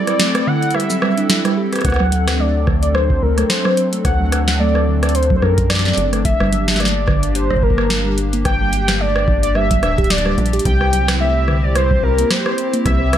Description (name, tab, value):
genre	IDM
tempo	109 BPM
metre	4/4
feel	swing 56% on 16ths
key	unclear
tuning	A4 = 441 Hz
part	warm velvety synth lead	melody	0.0-13.2 s	Bb4 to G5	-20 LUFS	equal	chorus, vintage 12-bit sampler grit, ping-pong delay
part	hollow soft pad	sustained chords	0.0-13.2 s	F#3 to A4	-24 LUFS	left 1 dB	chorus, sidechain pumping
part	booming analog drum machine	drums	0.1-13.2 s	hi-hat, rim click, shaker, snare drum	-20 LUFS	equal	none
part	harp-like synth pluck	arpeggios	0.2-13.2 s	D3 to G4	-23 LUFS	right 2 dB	chorus, cassette tape, tape echo
part	rubbery square bass	bass	1.8-13.2 s	D1 to F#2	-18 LUFS	equal	none
part	electronic kick drum	drums	1.8-13.0 s	none	-20 LUFS	equal	none
part	bubbling stepped-filter texture	texture	10.7-13.2 s	C5	-32 LUFS	right 6 dB	none
room	light reverb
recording	none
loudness	-14 LUFS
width	side -10 dB against mid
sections	0.0-1.8 A section; 1.8-13.2 B section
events	break 0.0-1.8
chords	0.0 Am; 1.8 D7; 6.3 Gm; 10.7 C